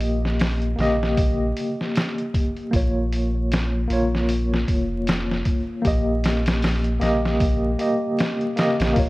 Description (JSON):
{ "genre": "trip hop", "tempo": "77 BPM", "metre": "4/4", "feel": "swing 57% on 16ths", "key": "unclear", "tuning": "A4 = 440 Hz", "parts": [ { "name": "mellow tine electric piano", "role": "accompaniment", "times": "0.0-9.1 s", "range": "Bb3 to Eb5", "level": "-23 LUFS", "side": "equal", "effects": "medium stereo tremolo, tape echo" }, { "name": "round analog bass", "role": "bass", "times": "0.0-9.1 s", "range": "F1 to Bb1", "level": "-24 LUFS", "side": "equal", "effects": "tube saturation" }, { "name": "trip hop sampler-style drum kit", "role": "drums", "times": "0.0-9.1 s", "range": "hi-hat, kick drum, snare drum", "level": "-24 LUFS", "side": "equal", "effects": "studio reverb" } ], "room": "light reverb", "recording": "worn, warbling old tape, cassette tape, vinyl crackle, warbly pitch drift", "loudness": "-20 LUFS", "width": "side -20 dB against mid", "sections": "0.0-9.0 A section", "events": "none", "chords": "0.0 Eb/Bb; 2.7 Bbm; 5.8 Eb/Bb" }